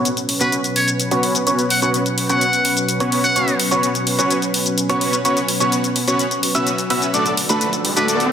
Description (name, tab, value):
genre	EDM, festival progressive house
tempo	127 BPM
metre	4/4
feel	straight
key	B minor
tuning	A4 = 440 Hz
part	lush unison pad	sustained chords	0.0-8.3 s	D2 to B4	-24 LUFS	equal	chorus
part	warm concert grand piano	arpeggios	0.0-8.2 s	B5 to E6	-24 LUFS	right 2 dB	low-pass filter, tape echo
part	dense compressed supersaw	riff	0.0-8.2 s	A3 to E5	-20 LUFS	equal	cassette tape, low-pass filter, tape echo
part	electronic hi-hat and shaker	drums	0.1-8.3 s	none	-21 LUFS	left 2 dB	none
part	trumpet with metal mute	melody	0.4-3.6, 8.0-8.1 s	B4 to F#5	-22 LUFS	equal	tape echo
part	riser	sound effects	7.5-8.3 s	none	-24 LUFS	left 1 dB	none
room	moderate lush hall reverb, RT60 1.8 s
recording	dense, heavily limited modern master, high-pass filter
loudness	-15 LUFS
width	side -8 dB against mid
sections	0.0-8.3 A section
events	build-up 0.0-8.3; filter sweep on supersaw synth 0.0-8.3; filter sweep on grand piano 0.0-8.3; riser 7.5-8.3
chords	0.0 Bsus2; 7.1 D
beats	0.05 0.53 1.00 | 1.47 1.94 2.42 2.89 | 3.36 3.83 4.30 4.78 | 5.25 5.72 6.19 6.67 | 7.14 7.61 8.08